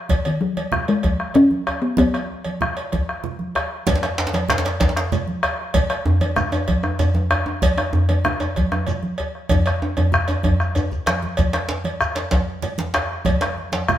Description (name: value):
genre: west african traditional, West African drum ensemble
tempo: 128 BPM (dotted quarters)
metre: 12/8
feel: straight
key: B major pentatonic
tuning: A4 = 438 Hz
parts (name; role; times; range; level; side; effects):
- bombo; percussion; 0.1-14.0 s; none; -24 LUFS; equal; none
- congas; percussion; 0.1-14.0 s; none; -27 LUFS; right 3 dB; none
- cowbell; percussion; 0.1-13.9 s; none; -27 LUFS; right 1 dB; none
- djembe; percussion; 0.1-14.0 s; none; -28 LUFS; left 2 dB; none
- talking drum; melody; 0.3-3.5 s; D#3 to C#4; -18 LUFS; left 1 dB; none
- djembe; percussion; 3.9-13.9 s; none; -22 LUFS; equal; none
- shekere; percussion; 3.9-14.0 s; none; -31 LUFS; equal; none
room: wet stone room reverb, RT60 1.1 s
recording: band playing live in one room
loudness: -18 LUFS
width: side -12 dB against mid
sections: 0.0-3.9 A section; 3.9-14.0 B section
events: drum fill 10.8-11.4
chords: none